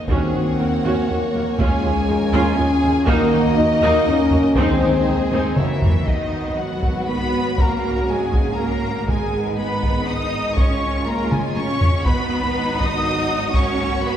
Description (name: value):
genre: cinematic, epic orchestral film score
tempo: 121 BPM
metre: 3/4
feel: straight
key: unclear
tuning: A4 = 440 Hz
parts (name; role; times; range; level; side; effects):
- warm symphonic violin section; second line; 0.0-14.2 s; A#3 to Ab5; -29 LUFS; left 1 dB; none
- warm symphonic violin section; melody; 0.1-14.2 s; Gb4 to D#6; -27 LUFS; left 2 dB; none
- warm symphonic viola section; accompaniment; 0.1-14.2 s; Bb3 to D#5; -27 LUFS; right 1 dB; none
- dark woodwind section; sustained chords; 0.1-5.8 s; Ab3 to Ab5; -30 LUFS; left 1 dB; none
- mellow French horn section; sustained chords; 0.1-14.2 s; Ab3 to F#4; -23 LUFS; left 1 dB; none
- mellow trombone section; sustained chords; 0.1-14.2 s; A#2 to Db4; -28 LUFS; right 2 dB; none
- rich symphonic cello section; bass; 0.1-14.2 s; Eb2 to D#4; -27 LUFS; right 2 dB; none
- rich symphonic double bass section; bass; 0.1-14.2 s; Gb1 to Eb2; -28 LUFS; right 2 dB; none
- taiko ensemble; drums; 0.1-14.0 s; none; -22 LUFS; equal; none
- timpani; percussion; 0.1-0.8, 3.1-5.3 s; Eb3; -27 LUFS; equal; none
room: wet scoring stage reverb, RT60 1.6 s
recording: heard from further back in the room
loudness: -17 LUFS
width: side -10 dB against mid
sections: 0.0-6.1 A section; 6.1-14.2 B section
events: drum fill 5.3-6.1, 11.3-12.1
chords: 0.1 Gb/Eb; 1.6 Db/Eb; 3.1 Ebm; 4.6 Ab/Eb; 5.6 Gb7; 6.1 B/G#; 7.6 F#/G#; 9.1 G#m; 10.6 C#/G#; 12.1 B/G#; 13.5 F#/G#